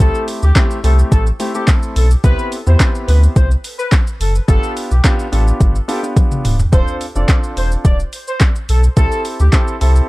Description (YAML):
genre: dance-pop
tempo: 107 BPM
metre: 4/4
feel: straight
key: C major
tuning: A4 = 440 Hz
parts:
  - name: warm horn section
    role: melody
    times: 0.0-9.9 s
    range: G4 to D5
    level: -24 LUFS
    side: left 1 dB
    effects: sidechain pumping, tape echo
  - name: warm concert grand piano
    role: accompaniment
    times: 0.0-10.1 s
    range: A3 to A4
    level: -23 LUFS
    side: equal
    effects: sidechain pumping
  - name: warm sub bass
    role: bass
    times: 0.0-10.0 s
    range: Db1 to E2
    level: -12 LUFS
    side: equal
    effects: sidechain pumping
  - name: smooth R&B drum kit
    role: drums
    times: 0.0-10.1 s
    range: handclaps, hi-hat, kick drum, shaker, snare drum, toms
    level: -14 LUFS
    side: equal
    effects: overdrive
room: little or no reverb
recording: dry, gritty hardware recording, cassette tape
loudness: -12 LUFS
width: side -20 dB against mid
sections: 0.0-10.1 A section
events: drum fill 6.2-6.7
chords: 0.0 Am7/C; 2.2 Cmaj7; 4.5 G7; 6.7 Dm7; 9.0 Am7/C